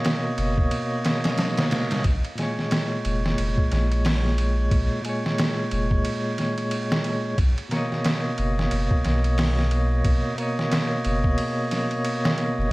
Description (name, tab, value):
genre	trip hop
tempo	90 BPM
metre	4/4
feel	swing 59% on 16ths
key	unclear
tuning	A4 = 442 Hz
part	percussive tonewheel organ	accompaniment	0.0-12.7 s	Bb2 to D#5	-25 LUFS	equal	overdrive, tremolo, tape echo
part	trip hop sampler-style drum kit	drums	0.0-12.6 s	hi-hat, kick drum, ride cymbal, snare drum	-25 LUFS	equal	none
part	soft dub sub bass	bass	0.4-12.7 s	F1 to B1	-23 LUFS	equal	none
room	little or no reverb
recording	vinyl crackle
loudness	-21 LUFS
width	side -21 dB against mid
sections	0.0-12.7 A section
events	none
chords	0.0 Bmaj9; 2.0 Bbm7; 7.4 Bmaj9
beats	0.05 0.72 1.38 | 2.05 2.72 3.38 4.05 | 4.72 5.38 6.05 6.72 | 7.38 8.05 8.72 9.38 | 10.05 10.72 11.38 12.05 | 12.72